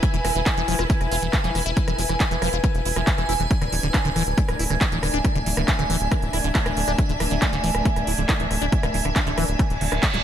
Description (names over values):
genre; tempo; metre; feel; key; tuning
psychedelic trance; 138 BPM; 4/4; straight; unclear; A4 = 440 Hz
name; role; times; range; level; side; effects
evolving wavetable pad; sustained chords; 0.0-10.2 s; G#5; -28 LUFS; right 4 dB; phaser, built-in reverb, sidechain pumping
liquid acid bass; riff; 0.0-10.2 s; D3 to F4; -29 LUFS; moving between left 4 dB and right 4 dB; phaser, auto-pan, vintage 12-bit sampler grit, sidechain pumping, ping-pong delay
big-room dance drum kit; drums; 0.0-10.2 s; handclaps, hi-hat, rim click, snare drum; -27 LUFS; equal; overdrive
electronic kick drum; drums; 0.0-10.1 s; none; -22 LUFS; equal; overdrive
dark studio string section; texture; 0.0-10.2 s; A3 to E5; -30 LUFS; left 4 dB; sidechain pumping
tight sequencer bass; bass; 0.1-10.2 s; D1 to E1; -26 LUFS; equal; none
reverse cymbal; sound effects; 9.7-10.2 s; none; -28 LUFS; right 6 dB; none
room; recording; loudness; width
light reverb, digital ambience; none; -19 LUFS; side -10 dB against mid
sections
0.0-10.2 A section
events
reverse cymbal 9.7-10.2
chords
0.0 E5; 3.5 D5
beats
| 0.03 0.46 0.90 1.33 | 1.77 2.20 2.64 3.07 | 3.51 3.94 4.38 4.81 | 5.25 5.68 6.12 6.55 | 6.99 7.42 7.85 8.29 | 8.72 9.16 9.59 10.03